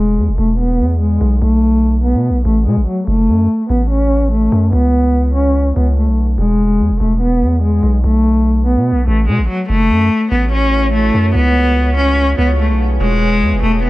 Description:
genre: hip hop, drill.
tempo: 145 BPM.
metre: 4/4.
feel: half-time.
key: F# minor.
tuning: A4 = 440 Hz.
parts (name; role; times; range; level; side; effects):
warm cello; melody; 0.0-13.9 s; F#3 to C#4; -14 LUFS; equal; low-pass filter, digital delay.
long sustained 808-style bass; bass; 0.0-13.9 s; E1 to B2; -14 LUFS; equal; none.
deep dark ambient pad; sustained chords; 10.3-13.9 s; A3 to E5; -24 LUFS; right 2 dB; chorus, built-in reverb.
room: small room ambience.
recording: none.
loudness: -11 LUFS.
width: side -18 dB against mid.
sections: 0.0-13.9 A section.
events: filter sweep on cello 0.0-9.7.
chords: 0.0 E; 1.4 Asus2; 3.1 F#m; 4.7 Bsus2; 6.4 E; 8.0 Asus2; 9.7 F#m7; 11.3 C#7; 13.0 Eadd9.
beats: 0.18 0.59 1.00 | 1.42 1.83 2.25 2.66 | 3.07 3.49 3.90 4.31 | 4.73 5.14 5.55 5.97 | 6.38 6.80 7.21 7.62 | 8.04 8.45 8.87 9.28 | 9.69 10.11 10.52 10.93 | 11.35 11.76 12.18 12.59 | 13.00 13.42 13.83.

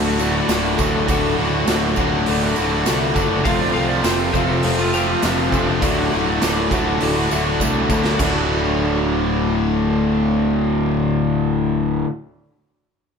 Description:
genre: classic rock.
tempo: 101 BPM.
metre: 4/4.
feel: straight.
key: D mixolydian.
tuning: A4 = 440 Hz.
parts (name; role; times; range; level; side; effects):
picked old ladder-braced acoustic guitar; accompaniment; 0.0-12.1 s; D3 to A4; -27 LUFS; left 3 dB; none.
cranked stack guitar; riff; 0.0-12.1 s; D2 to F#4; -20 LUFS; left 1 dB; overdrive.
cranked stack guitar; riff; 0.0-12.1 s; D2 to F3; -22 LUFS; left 1 dB; overdrive, spring reverb.
fuzz picked electric bass; bass; 0.0-12.0 s; D1 to D2; -25 LUFS; right 1 dB; overdrive.
tambourine; percussion; 0.2-8.5 s; none; -33 LUFS; right 8 dB; none.
raw garage drum kit; drums; 0.5-8.3 s; crash cymbal, hi-hat, kick drum, snare drum; -25 LUFS; right 1 dB; none.
lightly driven lead guitar; second line; 3.4-11.3 s; D4 to F5; -28 LUFS; left 2 dB; none.
room: moderate studio reverb, RT60 0.8 s.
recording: band playing live in one room.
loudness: -16 LUFS.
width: side -6 dB against mid.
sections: 0.0-8.2 A section; 8.2-10.6 B section.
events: drum fill 7.6-8.2.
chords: 0.0 D; 3.5 F; 5.8 D.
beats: 0.49 | 1.09 1.68 2.27 2.86 | 3.46 4.05 4.64 5.23 | 5.82 6.42 7.01 7.60 | 8.19 8.78 9.37 9.97.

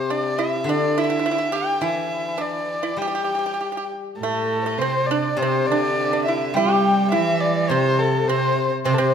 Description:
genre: chinese traditional, Chinese chamber ensemble.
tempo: 103 BPM.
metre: 4/4.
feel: rubato.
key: unclear.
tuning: A4 = 445 Hz.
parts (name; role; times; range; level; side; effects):
dark erhu; melody; 0.0-9.1 s; A4 to G5; -23 LUFS; left 1 dB; none.
pipa; second line; 0.0-9.1 s; A3 to G4; -26 LUFS; right 6 dB; none.
steel-string zither; accompaniment; 0.0-9.1 s; C3 to G3; -26 LUFS; left 3 dB; none.
mellow hollow xiao; second line; 4.2-9.1 s; A4 to G5; -26 LUFS; left 5 dB; none.
rich cello; second line; 4.2-9.1 s; A2 to G3; -24 LUFS; right 4 dB; none.
room: moderate scoring stage reverb, RT60 1.6 s.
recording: minimal, uncompressed stereo recording.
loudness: -19 LUFS.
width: side -7 dB against mid.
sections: 0.0-4.2 A section; 4.2-9.1 B section.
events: none.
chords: none.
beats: 0.08 0.66 1.24 | 1.81 2.39 2.98 3.59 | 4.20 4.79 5.38 5.97 | 6.55 7.13 7.71 8.29 | 8.87.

